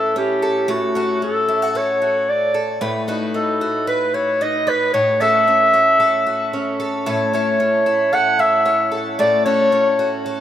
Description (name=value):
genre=folktronica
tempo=113 BPM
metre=4/4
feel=straight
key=A major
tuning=A4 = 440 Hz
part: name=mellow clarinet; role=melody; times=0.0-10.2 s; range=F#4 to F#5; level=-16 LUFS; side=equal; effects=tape echo
part: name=picked twelve-string acoustic guitar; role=arpeggios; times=0.0-10.4 s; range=A2 to B4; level=-22 LUFS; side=equal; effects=tape echo
room=moderate lush hall reverb, RT60 2.8 s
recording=rough home demo mix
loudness=-15 LUFS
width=side -11 dB against mid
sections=0.0-10.4 A section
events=none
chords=0.0 A; 0.7 A6; 2.8 B7/A; 4.9 F#m7/A; 7.1 A; 9.2 A6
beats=0.16 | 0.69 1.22 1.75 2.28 | 2.81 3.34 3.88 4.41 | 4.94 5.47 6.00 6.53 | 7.06 7.59 8.12 8.65 | 9.19 9.72 10.25